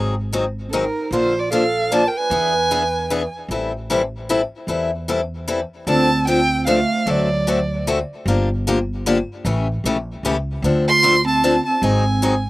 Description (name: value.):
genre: acoustic string swing (jazz manouche).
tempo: 151 BPM.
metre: 3/4.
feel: swing 62% on 8ths.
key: D minor from 5.9 s.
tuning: A4 = 440 Hz.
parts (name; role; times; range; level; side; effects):
picked steel-string acoustic guitar; accompaniment; 0.0-12.3 s; C#3 to A4; -21 LUFS; left 2 dB; slapback echo.
upright bass; bass; 0.0-12.5 s; G1 to E2; -24 LUFS; equal; none.
warm violin; melody; 0.7-3.4, 5.9-7.9, 10.9-12.5 s; A4 to C6; -19 LUFS; right 2 dB; none.
breathy clarinet; second line; 0.7-3.4, 5.9-7.9, 10.9-12.5 s; F#3 to D5; -22 LUFS; right 3 dB; none.
room: little or no reverb.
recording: recorded outdoors, with no room sound.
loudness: -17 LUFS.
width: side -18 dB against mid.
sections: 0.0-5.9 A section; 5.9-12.5 B section.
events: none.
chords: 0.0 G#9; 1.1 Bbmaj7; 2.3 E7; 3.5 Am7; 5.9 Dm7; 7.1 D7; 8.3 Gm7; 9.4 A7; 10.6 Dm7; 11.8 G#7.